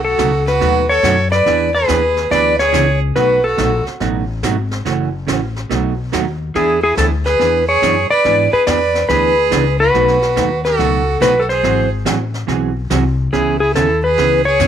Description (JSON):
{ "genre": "country, western swing", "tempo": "142 BPM", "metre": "4/4", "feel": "swing 66% on 8ths", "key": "unclear", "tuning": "A4 = 441 Hz", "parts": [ { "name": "clean lap steel guitar", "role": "melody", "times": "0.0-3.8, 6.6-14.7 s", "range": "G#4 to D5", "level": "-14 LUFS", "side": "left 2 dB", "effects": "none" }, { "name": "clear fiddle", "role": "second line", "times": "0.0-3.8, 6.6-14.7 s", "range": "E4 to B4", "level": "-20 LUFS", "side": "right 10 dB", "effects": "none" }, { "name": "upright bass", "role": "bass", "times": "0.0-14.7 s", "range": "F#1 to G#2", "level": "-20 LUFS", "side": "left 2 dB", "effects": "none" }, { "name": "vintage hollow-body jazz guitar", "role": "accompaniment", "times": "0.2-14.7 s", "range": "B2 to G#4", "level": "-20 LUFS", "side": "right 9 dB", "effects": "none" }, { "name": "jazz brush drum kit", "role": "drums", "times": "0.2-14.7 s", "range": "brushed snare drum, hi-hat, snare drum", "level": "-26 LUFS", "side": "equal", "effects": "none" } ], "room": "light reverb", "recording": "1960s-style stereo", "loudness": "-13 LUFS", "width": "side -9 dB against mid", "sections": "0.0-14.7 A section", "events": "none", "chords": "0.0 B7; 1.5 E7; 3.2 B7; 4.9 F#m7; 5.7 B7; 6.6 E7; 9.9 B7; 11.6 G#7alt; 13.3 C#m7", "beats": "0.19 0.61 1.04 | 1.46 1.89 2.31 2.73 | 3.16 3.58 4.01 4.43 | 4.86 5.28 5.71 6.13 | 6.55 6.98 7.40 7.82 | 8.25 8.67 9.10 9.52 | 9.94 10.37 10.79 11.21 | 11.64 12.06 12.48 12.91 | 13.33 13.75 14.18 14.60" }